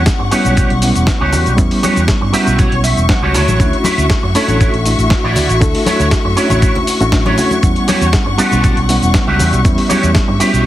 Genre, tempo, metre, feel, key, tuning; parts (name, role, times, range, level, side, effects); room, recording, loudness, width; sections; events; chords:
nu-disco, nu disco; 119 BPM; 4/4; swing 53% on 16ths; E dorian; A4 = 439 Hz
reed electric piano; accompaniment; 0.0-10.7 s; G3 to F#5; -17 LUFS; equal; overdrive, fast tremolo, tape echo
warm symphonic string section; sustained chords; 0.0-10.7 s; G3 to C#6; -20 LUFS; left 3 dB; sidechain pumping
fingered electric bass with an envelope filter; bass; 0.0-10.7 s; E1 to G2; -16 LUFS; equal; sidechain pumping
dusty soul sampler-style drum kit; drums; 0.1-10.6 s; hi-hat, shaker, snare drum; -20 LUFS; equal
electronic kick drum; drums; 0.1-10.3 s; -15 LUFS; equal
electric guitar with an envelope filter; riff; 0.2-10.7 s; E4 to A5; -18 LUFS; right 3 dB; ensemble chorus, tape echo
congas; percussion; 0.4-10.0 s; -22 LUFS; left 2 dB
light reverb; heavily compressed radio sound; -10 LUFS; side -13 dB against mid
0.0-10.7 A section
clean electric guitar fill 2.1-3.6, 10.2-10.7
0.0 Em69; 3.3 Dmaj9; 7.6 Em69